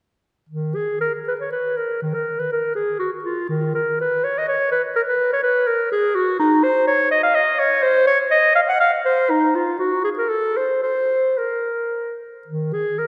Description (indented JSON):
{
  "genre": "classical, baroque-style fantasia for unaccompanied clarinet",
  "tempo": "104-128 BPM",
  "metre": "3/4",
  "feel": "rubato",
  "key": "Bb minor from 6.4 s",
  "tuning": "A4 = 440 Hz",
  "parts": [
    { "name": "mellow clarinet", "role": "solo", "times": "0.5-13.1 s", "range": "Eb3 to Gb5", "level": "-20 LUFS", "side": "equal", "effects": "none" }
  ],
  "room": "wet church reverb, RT60 2.9 s",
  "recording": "recorded in a church or concert hall",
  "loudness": "-20 LUFS",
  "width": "mono",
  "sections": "0.5-12.5 A section",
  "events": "none",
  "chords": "none"
}